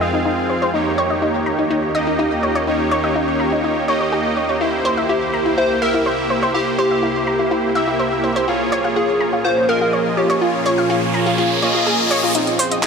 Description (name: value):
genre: progressive house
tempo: 124 BPM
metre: 4/4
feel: straight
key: unclear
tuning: A4 = 439 Hz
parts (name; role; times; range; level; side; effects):
- plucky unison lead; melody; 0.0-0.5, 5.1-12.9 s; F4 to C5; -21 LUFS; equal; cassette tape, digital delay
- evolving wavetable pad; sustained chords; 0.0-12.9 s; C2 to G5; -25 LUFS; left 1 dB; chorus, built-in reverb
- analog pluck; arpeggios; 0.0-12.9 s; Eb4 to Bb5; -21 LUFS; left 1 dB; chorus, digital delay
- soft supersaw; stabs; 0.0-12.9 s; Bb3 to F5; -20 LUFS; right 1 dB; low-pass filter, digital delay
- riser; sound effects; 10.0-12.3 s; none; -23 LUFS; equal; none
- pop drum kit; drums; 12.3-12.9 s; handclaps, hi-hat; -20 LUFS; right 1 dB; none
room: moderate huge ambient reverb, RT60 4.4 s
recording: none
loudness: -15 LUFS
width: side -5 dB against mid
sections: 0.0-12.3 A section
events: filter sweep on synth pluck 0.0-12.3; riser 10.0-12.3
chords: 0.0 Fm7; 0.7 Eb7; 4.6 C7; 8.5 Bbm7; 12.3 Fm7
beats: 0.25 | 0.74 1.22 1.71 2.19 | 2.67 3.16 3.64 4.12 | 4.61 5.09 5.58 6.06 | 6.54 7.03 7.51 8.00 | 8.48 8.96 9.45 9.93 | 10.41 10.90 11.38 11.87 | 12.35 12.83